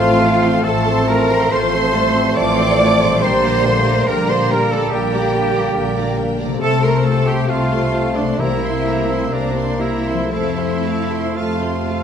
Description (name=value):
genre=classical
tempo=57-72 BPM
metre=4/4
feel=rubato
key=F major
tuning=A4 = 439 Hz
part: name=warm symphonic violin section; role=melody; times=0.0-12.0 s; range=D5 to D6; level=-28 LUFS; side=left 4 dB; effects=none
part: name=bright concert flute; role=second line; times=0.0-12.0 s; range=D5 to D6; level=-26 LUFS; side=left 2 dB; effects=none
part: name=mellow cor anglais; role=second line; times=0.0-12.0 s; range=D4 to D5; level=-25 LUFS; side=right 2 dB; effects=none
part: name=rich studio violin section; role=second line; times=0.0-12.0 s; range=A4 to C6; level=-29 LUFS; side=left 2 dB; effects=none
part: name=warm clarinet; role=second line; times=0.0-12.0 s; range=C5 to D5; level=-27 LUFS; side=left 3 dB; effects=none
part: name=mellow bassoon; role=accompaniment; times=0.0-12.0 s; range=A3 to Bb3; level=-24 LUFS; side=right 2 dB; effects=none
part: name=warm symphonic viola section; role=accompaniment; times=0.0-12.0 s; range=G3 to A4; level=-25 LUFS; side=right 2 dB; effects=none
part: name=bright trombone section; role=sustained chords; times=0.0-12.0 s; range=C3 to C4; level=-26 LUFS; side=right 4 dB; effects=none
part: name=warm French horn section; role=sustained chords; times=0.0-12.0 s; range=F3 to C4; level=-26 LUFS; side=left 4 dB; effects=none
part: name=concert harp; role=arpeggios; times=0.0-12.0 s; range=A2 to C5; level=-25 LUFS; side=left 9 dB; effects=none
part: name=rich symphonic cello section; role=bass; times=0.0-12.0 s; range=D4 to D5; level=-22 LUFS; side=right 1 dB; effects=none
part: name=warm symphonic double bass section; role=bass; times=0.0-12.0 s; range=A1 to F2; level=-23 LUFS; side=right 2 dB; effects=none
part: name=timpani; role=percussion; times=8.4-9.8 s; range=C3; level=-29 LUFS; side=left 2 dB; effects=none
room=wet recital hall reverb, RT60 1.4 s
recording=minimal, uncompressed stereo recording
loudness=-14 LUFS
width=side -8 dB against mid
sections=0.0-12.0 A section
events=none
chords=0.0 F/A; 3.2 Gm/Bb; 6.6 F/C; 8.4 C7; 10.3 F